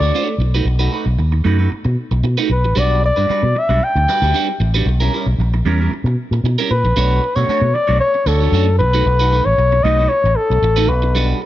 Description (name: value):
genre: disco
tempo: 114 BPM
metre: 4/4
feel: straight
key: B minor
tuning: A4 = 441 Hz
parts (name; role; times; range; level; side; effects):
- mellow flugelhorn; melody; 0.0-11.3 s; A4 to G5; -17 LUFS; left 2 dB; none
- electric guitar at the edge of break-up; accompaniment; 0.0-11.5 s; G3 to C#5; -21 LUFS; right 5 dB; phaser
- fingered electric bass with an envelope filter; bass; 0.0-11.3 s; A1 to B2; -16 LUFS; equal; none
room: light reverb, small room ambience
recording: nothing above 7.7 kHz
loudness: -13 LUFS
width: side -14 dB against mid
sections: 0.0-7.0 A section; 7.0-11.5 B section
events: none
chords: 0.4 B7; 2.5 A13sus4; 4.9 A#dim7; 7.0 Bm9; 8.8 B7; 10.9 Gmaj7